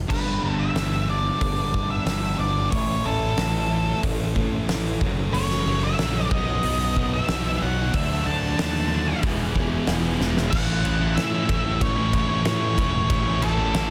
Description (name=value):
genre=quiet-loud alternative rock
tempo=92 BPM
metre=4/4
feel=straight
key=A major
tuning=A4 = 441 Hz
part: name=modern bright picked electric bass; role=bass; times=0.0-13.9 s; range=E1 to A2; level=-30 LUFS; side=equal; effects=none
part: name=octave-fuzz lead guitar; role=melody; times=0.1-13.9 s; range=A4 to A5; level=-30 LUFS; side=equal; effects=distortion, analog delay
part: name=electric guitar through a small old amp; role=arpeggios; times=0.1-10.5 s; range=G2 to G#4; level=-35 LUFS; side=equal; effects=phaser
part: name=thick fuzz guitar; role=riff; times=0.1-13.9 s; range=F#2 to E4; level=-30 LUFS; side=equal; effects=distortion
part: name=oversized low-tuned drum kit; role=drums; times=0.1-13.9 s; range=crash cymbal, hi-hat, kick drum, ride cymbal, snare drum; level=-29 LUFS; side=equal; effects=none
part: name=heavy high-gain guitar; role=riff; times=5.3-13.9 s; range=E2 to E4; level=-34 LUFS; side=equal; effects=distortion
room=light reverb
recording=dense, heavily limited modern master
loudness=-23 LUFS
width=mono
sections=0.1-10.5 A section; 10.5-13.9 B section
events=drum fill 10.2-10.5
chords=0.1 G; 2.7 A; 5.0 F#m; 6.3 Badd9; 7.9 Dadd9; 9.2 E6; 10.5 A